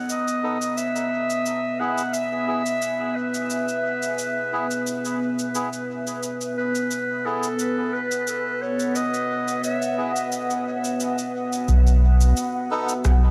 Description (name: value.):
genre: ambient dub.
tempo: 88 BPM.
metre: 4/4.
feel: swing 53% on 16ths.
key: unclear.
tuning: A4 = 442 Hz.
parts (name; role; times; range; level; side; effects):
deep dark ambient pad; sustained chords; 0.0-13.3 s; B3 to G#5; -30 LUFS; equal; chorus, built-in reverb.
warm clarinet; melody; 0.1-10.3 s; A4 to F#5; -29 LUFS; equal; dub echo.
electronic shaker and rim click; drums; 0.1-13.2 s; none; -36 LUFS; equal; none.
melodica; stabs; 0.4-12.9 s; B3 to A4; -34 LUFS; equal; low-pass filter, dub echo.
warm sub bass; bass; 11.7-13.3 s; B1; -17 LUFS; equal; none.
electronic kick drum; drums; 11.7-13.2 s; none; -27 LUFS; equal; none.
room: moderate huge ambient reverb, RT60 6.9 s.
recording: lossy compression artefacts.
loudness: -24 LUFS.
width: mono.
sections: 0.0-11.7 A section; 11.7-13.3 B section.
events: filter sweep on ambient pad 0.0-11.7.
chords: 0.0 B7; 0.8 E/B; 11.7 B7.